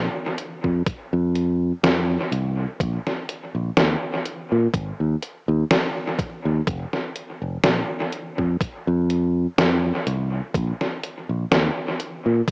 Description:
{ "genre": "vaporwave", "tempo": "62 BPM", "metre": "4/4", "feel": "swing 54% on 16ths", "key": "unclear", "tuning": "A4 = 440 Hz", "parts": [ { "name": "fingered electric bass", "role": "bass", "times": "0.0-12.4 s", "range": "F1 to Bb2", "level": "-21 LUFS", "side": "equal", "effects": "none" }, { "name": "detuned 8-bit digital drum machine", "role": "drums", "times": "0.4-12.5 s", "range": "hi-hat, snare drum", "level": "-22 LUFS", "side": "equal", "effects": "dub echo" }, { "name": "electronic kick drum", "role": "drums", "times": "0.6-12.5 s", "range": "none", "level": "-24 LUFS", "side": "equal", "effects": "none" } ], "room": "moderate plate reverb, RT60 2.2 s", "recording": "echo-heavy mix, cassette tape, small speaker sound", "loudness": "-20 LUFS", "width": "side -29 dB against mid", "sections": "0.0-12.5 A section", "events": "none", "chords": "none" }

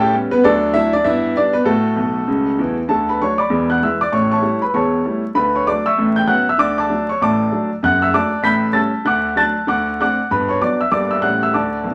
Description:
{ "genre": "jazz, stride piano", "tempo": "194 BPM", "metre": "4/4", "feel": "swing 61% on 8ths", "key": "D major", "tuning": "A4 = 439 Hz", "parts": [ { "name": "clear concert grand piano", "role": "solo", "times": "0.0-11.9 s", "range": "E1 to B6", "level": "-17 LUFS", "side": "equal", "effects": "none" } ], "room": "moderate studio reverb, RT60 0.7 s", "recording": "vinyl crackle", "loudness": "-17 LUFS", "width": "mono", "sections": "0.0-2.9 A section; 2.9-11.9 B section", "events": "grand piano fill 2.0-2.9", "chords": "0.4 D; 1.0 G; 1.7 F#madd11; 2.3 A; 2.9 D; 3.5 E7; 4.1 A7; 5.4 D; 6.0 A13; 6.6 D; 7.8 D/F#; 8.4 A7; 9.1 D; 9.7 D7; 10.3 Gmaj7; 10.9 Gm; 11.2 A7" }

